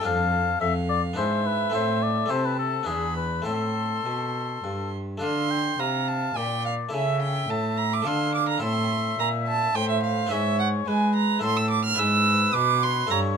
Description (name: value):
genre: classical, baroque-style sonata movement with continuo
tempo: 106 BPM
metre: 3/4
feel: straight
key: A minor, D minor from 5.2 s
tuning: A4 = 441 Hz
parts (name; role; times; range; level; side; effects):
- warm oboe; melody; 0.0-13.4 s; G#4 to G5; -28 LUFS; left 8 dB; none
- warm violin; second line; 0.0-13.2 s; E5 to F6; -26 LUFS; right 6 dB; none
- harpsichord; accompaniment; 0.0-13.4 s; E2 to C#5; -32 LUFS; left 3 dB; none
- warm cello; bass; 0.0-13.4 s; E2 to G#3; -27 LUFS; right 2 dB; none
room: light reverb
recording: close, detailed microphones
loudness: -22 LUFS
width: side -6 dB against mid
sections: 0.0-5.2 A section; 5.2-13.4 A section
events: none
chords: 0.1 Dm/F; 1.2 E7/G#; 1.7 Am; 2.3 Am/C; 2.9 E7; 3.5 Am; 5.2 Dm; 6.9 A/C#; 8.1 Dm; 8.6 Am; 10.3 E/G#; 11.4 Am; 12.0 E/G#